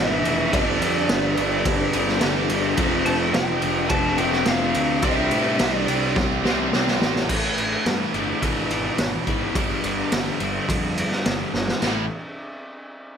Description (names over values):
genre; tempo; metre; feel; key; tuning
hard rock; 106 BPM; 4/4; straight; A minor; A4 = 435 Hz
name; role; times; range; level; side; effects
lead guitar through a small cranked amp; melody; 0.0-6.1 s; D5 to A5; -27 LUFS; equal; overdrive
tonewheel organ; sustained chords; 0.0-7.3 s; E3 to D5; -35 LUFS; equal; none
distorted electric guitar; riff; 0.0-12.0 s; E2 to C4; -28 LUFS; right 14 dB; distortion
overdriven electric guitar; riff; 0.0-7.3 s; E2 to C4; -28 LUFS; equal; none
overdriven semi-hollow guitar; riff; 0.0-12.1 s; E2 to C4; -28 LUFS; left 12 dB; none
fuzz picked electric bass; bass; 0.0-12.1 s; F1 to A2; -29 LUFS; equal; overdrive
raw garage drum kit; drums; 0.3-11.9 s; crash cymbal, kick drum, ride cymbal, snare drum, splash cymbal; -23 LUFS; equal; none
room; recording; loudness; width
light reverb, small room ambience; none; -19 LUFS; side -7 dB against mid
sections
0.0-7.3 A section; 7.3-11.8 B section; 11.8-13.2 C section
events
drum fill 6.2-7.3, 11.5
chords
0.0 E/G#; 0.5 G5; 2.8 F5; 5.0 C; 7.3 A5; 8.4 E/G#; 9.6 G5; 11.8 A5